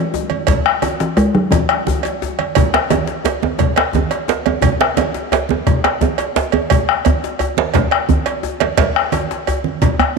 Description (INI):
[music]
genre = west african traditional, West African drum ensemble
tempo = 116 BPM (dotted quarters)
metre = 12/8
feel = straight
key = E major pentatonic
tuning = A4 = 440 Hz
[part]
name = talking drum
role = melody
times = 0.0-2.2 s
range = E3 to G#3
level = -19 LUFS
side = left 1 dB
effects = none
[part]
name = djembe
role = percussion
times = 0.1-10.1 s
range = none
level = -23 LUFS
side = left 4 dB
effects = none
[part]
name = congas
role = percussion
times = 0.3-10.0 s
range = none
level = -23 LUFS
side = right 9 dB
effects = none
[part]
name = cowbell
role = percussion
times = 0.3-10.2 s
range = none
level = -22 LUFS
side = right 9 dB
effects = none
[part]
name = bombo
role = percussion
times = 0.5-10.2 s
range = none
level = -19 LUFS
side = left 6 dB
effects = none
[part]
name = djembe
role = percussion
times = 2.7-10.2 s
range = none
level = -18 LUFS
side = right 7 dB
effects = none
[sound]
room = moderate plate reverb, RT60 2.7 s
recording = 1960s-style stereo with parts hard left and right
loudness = -14 LUFS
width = side -4 dB against mid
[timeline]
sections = 0.0-2.6 A section; 2.6-10.2 B section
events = none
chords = none